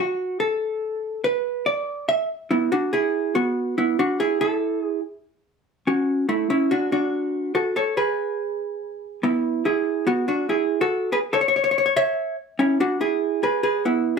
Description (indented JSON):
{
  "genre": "calypso",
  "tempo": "143 BPM",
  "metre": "4/4",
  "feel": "straight",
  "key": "unclear",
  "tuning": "A4 = 436 Hz",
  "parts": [
    { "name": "vintage hollow-body jazz guitar", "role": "solo", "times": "0.0-14.2 s", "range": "A3 to E5", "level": "-20 LUFS", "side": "right 1 dB", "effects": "none" }
  ],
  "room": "moderate studio reverb, RT60 0.7 s",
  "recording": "none",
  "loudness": "-20 LUFS",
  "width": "side -5 dB against mid",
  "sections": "0.0-2.9 A section; 2.9-14.2 B section",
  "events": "hollow-body jazz guitar solo 0.0-2.9",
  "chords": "0.0 N.C.; 1.3 Bmadd11; 2.9 E; 4.6 A; 6.3 D; 8.0 E; 11.3 A (rootless); 13.0 E"
}